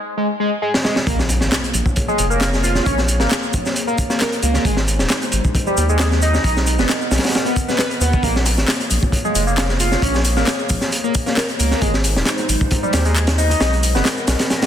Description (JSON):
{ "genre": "breakbeat, breaks", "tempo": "134 BPM", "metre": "4/4", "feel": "straight", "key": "unclear", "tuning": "A4 = 440 Hz", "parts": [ { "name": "overdriven synth lead", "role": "riff", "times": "0.2-14.7 s", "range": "G3 to B4", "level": "-22 LUFS", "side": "equal", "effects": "phaser, tape echo" }, { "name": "crunchy breakbeat drum kit", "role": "drums", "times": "0.7-14.7 s", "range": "hi-hat, kick drum, snare drum", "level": "-19 LUFS", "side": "equal", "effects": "none" }, { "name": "warbly tape-like pad", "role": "sustained chords", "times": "1.5-14.7 s", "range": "Ab3 to D#5", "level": "-26 LUFS", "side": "equal", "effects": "chorus, built-in reverb, vintage 12-bit sampler grit, sidechain pumping" }, { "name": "saturated sub bass", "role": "bass", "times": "1.1-14.4 s", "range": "Eb1 to Eb2", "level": "-19 LUFS", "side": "equal", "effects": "tube saturation" }, { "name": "house drum kit", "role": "drums", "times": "1.1-14.7 s", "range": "handclaps, hi-hat, shaker", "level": "-25 LUFS", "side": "equal", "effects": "overdrive" }, { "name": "bongos and congas", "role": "percussion", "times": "1.1-14.7 s", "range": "none", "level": "-33 LUFS", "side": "left 2 dB", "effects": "none" }, { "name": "impact and swell", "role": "sound effects", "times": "1.1-2.9, 14.5-14.7 s", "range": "none", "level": "-30 LUFS", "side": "equal", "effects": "none" } ], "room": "light reverb, studio reverb", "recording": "dense, heavily limited modern master", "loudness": "-15 LUFS", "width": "side -10 dB against mid", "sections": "0.0-1.1 A section; 1.1-14.7 B section", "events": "break 0.0-1.1; build-up 0.0-1.1; filter sweep on analog synth lead 0.0-1.1; drum fill 0.7-1.1; drop 1.1-14.7; impact 1.1-2.9", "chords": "0.0 N.C.; 1.1 Bbm7; 4.7 Ab; 6.4 Bmaj7; 8.2 Bbm7; 11.8 Ab; 13.6 Bmaj7", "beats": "0.18 0.62 | 1.07 1.52 1.97 2.42 | 2.86 3.31 3.76 4.21 | 4.65 5.10 5.55 6.00 | 6.45 6.89 7.34 7.79 | 8.24 8.68 9.13 9.58 | 10.03 10.47 10.92 11.37 | 11.82 12.27 12.71 13.16 | 13.61 14.06 14.51" }